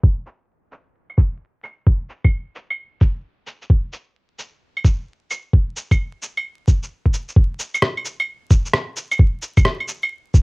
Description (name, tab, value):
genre	future garage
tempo	131 BPM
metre	4/4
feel	swing 65% on 16ths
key	none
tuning	none
part	electronic kick drum	drums	0.0-10.4 s	none	-13 LUFS	equal	cassette tape
part	electronic shaker, claves and rim click	drums	0.3-10.4 s	none	-22 LUFS	equal	cassette tape
room	little or no reverb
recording	home recording on cassette, vinyl crackle, low-pass filter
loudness	-18 LUFS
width	side -31 dB against mid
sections	0.0-7.4 A section; 7.4-10.4 B section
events	filter sweep 0.0-7.4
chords	none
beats	| 0.04 0.49 0.95 1.41 | 1.87 2.33 2.78 3.24 | 3.70 4.16 4.62 5.07 | 5.53 5.99 6.45 6.91 | 7.36 7.82 8.28 8.74 | 9.20 9.65 10.11